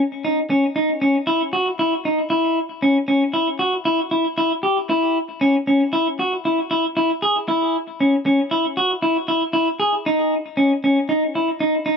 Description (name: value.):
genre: progressive instrumental, progressive.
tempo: 116 BPM.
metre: 5/4.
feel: straight.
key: unclear.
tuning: A4 = 438 Hz.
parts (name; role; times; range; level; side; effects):
clean electric guitar; solo; 0.2-12.0 s; C#4 to G#4; -17 LUFS; equal; ping-pong delay.
room: moderate studio reverb, RT60 0.6 s.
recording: none.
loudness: -17 LUFS.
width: side -6 dB against mid.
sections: 0.0-2.3 A section; 2.3-12.0 B section.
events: none.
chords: none.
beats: 0.24 0.75 1.27 1.79 | 2.30 2.82 3.33 3.85 4.37 | 4.88 5.40 5.92 6.43 6.95 | 7.47 7.98 8.50 9.02 9.53 | 10.05 10.57 11.08 11.60.